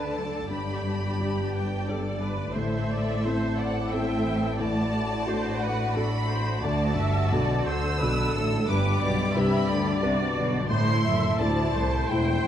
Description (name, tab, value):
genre	cinematic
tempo	88 BPM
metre	3/4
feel	rubato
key	G major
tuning	A4 = 441 Hz
part	rich studio violin section	melody	0.0-12.5 s	D5 to E6	-33 LUFS	left 2 dB	none
part	rich studio violin section	second line	0.0-12.5 s	D4 to D5	-35 LUFS	left 1 dB	none
part	clear studio viola section	accompaniment	0.0-12.5 s	G4 to E5	-32 LUFS	right 2 dB	none
part	felt-muted upright piano	accompaniment	0.0-12.5 s	D2 to D5	-30 LUFS	left 2 dB	none
part	concert harp	arpeggios	0.0-12.5 s	G2 to D5	-34 LUFS	left 4 dB	none
part	rich studio cello section	bass	0.0-12.5 s	C2 to D3	-30 LUFS	right 1 dB	none
part	rich studio double bass section	bass	0.0-12.5 s	E1 to D2	-32 LUFS	right 2 dB	none
room	moderate scoring stage reverb, RT60 1.7 s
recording	vinyl crackle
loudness	-23 LUFS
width	side -10 dB against mid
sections	0.0-12.5 A section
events	none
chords	0.0 D; 0.5 G; 2.6 Am; 4.6 D/A; 6.6 D; 8.7 G; 10.7 Am